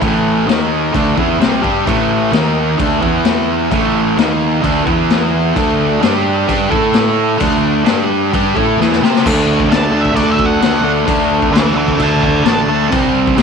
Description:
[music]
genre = garage rock duo or trio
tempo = 130 BPM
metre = 4/4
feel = straight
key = unclear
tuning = A4 = 440 Hz
[part]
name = fuzz guitar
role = riff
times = 0.0-13.4 s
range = A2 to C5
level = -13 LUFS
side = right 1 dB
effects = distortion
[part]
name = growling fingered electric bass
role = bass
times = 0.0-13.4 s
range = A1 to C3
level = -23 LUFS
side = right 2 dB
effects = overdrive
[part]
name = raw garage drum kit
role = drums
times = 0.0-13.4 s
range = crash cymbal, kick drum, snare drum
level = -17 LUFS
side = left 4 dB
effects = none
[part]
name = octave-fuzz lead guitar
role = melody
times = 9.7-12.9 s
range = B4 to A5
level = -19 LUFS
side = right 2 dB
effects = distortion
[sound]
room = light reverb, small room ambience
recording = 1960s-style stereo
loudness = -11 LUFS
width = side -6 dB against mid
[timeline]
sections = 0.0-9.2 A section; 9.2-13.4 B section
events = drum fill 8.8-9.2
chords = 0.0 A5; 0.5 D#5; 1.0 A5; 2.3 D#5; 2.8 D5; 3.0 E5; 3.7 A5; 4.2 D#5; 4.6 D5; 4.9 E5; 5.6 D5; 6.0 G5; 6.7 A5; 7.4 D5; 7.9 G5; 8.3 D5; 9.2 D; 12.9 C5

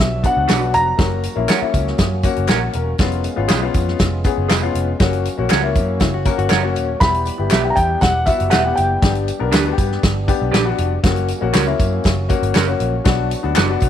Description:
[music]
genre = uptempo 1960s-style soul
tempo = 119 BPM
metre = 4/4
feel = straight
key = unclear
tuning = A4 = 440 Hz
[part]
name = warm concert grand piano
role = melody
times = 0.0-1.5, 7.0-9.7 s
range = E5 to B5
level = -19 LUFS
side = equal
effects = none
[part]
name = tonewheel organ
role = sustained chords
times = 0.0-13.9 s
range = F#3 to G4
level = -29 LUFS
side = right 1 dB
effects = overdrive, chorus vibrato, slow rotary speaker
[part]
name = vintage muted picked electric bass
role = bass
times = 0.0-13.9 s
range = D#1 to B2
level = -21 LUFS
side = right 1 dB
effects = none
[part]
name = natural country drum kit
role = drums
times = 0.0-13.9 s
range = hi-hat, kick drum, snare drum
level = -18 LUFS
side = equal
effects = none
[part]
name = warm upright piano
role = accompaniment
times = 0.2-13.9 s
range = A#3 to A#4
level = -22 LUFS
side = left 10 dB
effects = none
[part]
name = tambourine and handclaps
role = percussion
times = 0.2-13.9 s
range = none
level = -30 LUFS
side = left 6 dB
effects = none
[part]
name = electric guitar through a small old amp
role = stabs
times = 0.5-13.7 s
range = C#4 to F#5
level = -23 LUFS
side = right 12 dB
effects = none
[part]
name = hollow-body jazz guitar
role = riff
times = 6.0-7.0 s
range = E4 to C#5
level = -26 LUFS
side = left 8 dB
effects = none
[sound]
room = light reverb, small room ambience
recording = 1960s-style stereo with parts hard left and right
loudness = -15 LUFS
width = side -10 dB against mid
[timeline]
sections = 0.0-13.9 A section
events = none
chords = 0.0 Bm; 1.0 F#; 3.0 C#7/E#; 5.0 F#; 7.0 Em; 9.0 G; 11.0 F#; 13.1 Bm

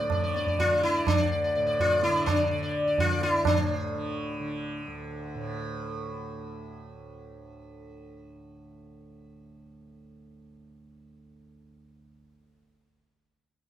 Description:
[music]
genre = indian classical, Hindustani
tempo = 126 BPM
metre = 5/4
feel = straight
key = unclear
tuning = A4 = 442 Hz
[part]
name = sitar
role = melody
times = 0.0-6.7 s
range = D4 to D5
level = -26 LUFS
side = left 1 dB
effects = none
[part]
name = tanpura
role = drone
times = 0.0-12.5 s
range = D2 to D3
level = -36 LUFS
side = right 2 dB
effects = none
[part]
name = tabla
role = percussion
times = 0.1-3.6 s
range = none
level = -29 LUFS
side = right 2 dB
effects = none
[sound]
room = moderate studio reverb, RT60 0.6 s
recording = minimal, uncompressed stereo recording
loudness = -25 LUFS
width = side -11 dB against mid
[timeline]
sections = 0.0-3.5 A section; 3.5-5.8 B section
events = speeding up 0.0-5.8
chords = none

